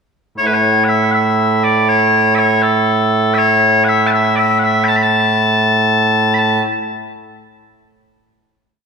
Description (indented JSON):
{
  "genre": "scottish traditional, Scottish pipe music",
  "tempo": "80 BPM (dotted quarters)",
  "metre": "6/8",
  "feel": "straight",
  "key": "A major",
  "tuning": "A4 = 438 Hz",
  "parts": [
    { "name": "loud bright bagpipes", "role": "solo", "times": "0.4-6.6 s", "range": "A2 to B5", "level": "-11 LUFS", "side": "equal", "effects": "none" }
  ],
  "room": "wet concert hall reverb, RT60 2.0 s",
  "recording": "recorded in a church or concert hall",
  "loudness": "-11 LUFS",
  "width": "side -5 dB against mid",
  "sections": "0.4-6.4 A section; 6.4-7.9 final note",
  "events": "none",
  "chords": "none"
}